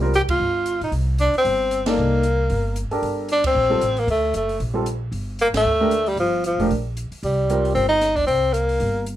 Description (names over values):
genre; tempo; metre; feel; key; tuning
modal jazz; 228 BPM; 4/4; swing 58% on 8ths; G minor; A4 = 440 Hz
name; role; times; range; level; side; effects
warm concert grand piano; accompaniment; 0.0-7.9 s; G3 to D5; -23 LUFS; right 1 dB; none
upright bass; bass; 0.0-9.2 s; F1 to D2; -24 LUFS; equal; none
open jazz drum kit; drums; 0.1-9.1 s; hi-hat, kick drum, ride cymbal, snare drum; -33 LUFS; right 2 dB; none
breathy tenor saxophone; melody; 0.2-9.1 s; F3 to G4; -19 LUFS; equal; none
room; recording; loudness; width
moderate studio ambience, RT60 0.5 s; none; -18 LUFS; side -12 dB against mid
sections
0.0-9.2 A section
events
band accent 0.3, 1.8, 3.4, 5.5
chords
0.0 C7sus2; 3.0 Gmadd9; 7.2 Gm11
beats
0.14 0.40 0.66 | 0.93 1.19 1.45 1.71 | 1.98 2.24 2.50 2.76 | 3.02 3.29 3.55 3.81 | 4.08 4.34 4.60 4.86 | 5.13 5.39 5.65 5.91 | 6.18 6.44 6.70 6.96 | 7.23 7.49 7.75 8.02 | 8.28 8.54 8.80 9.07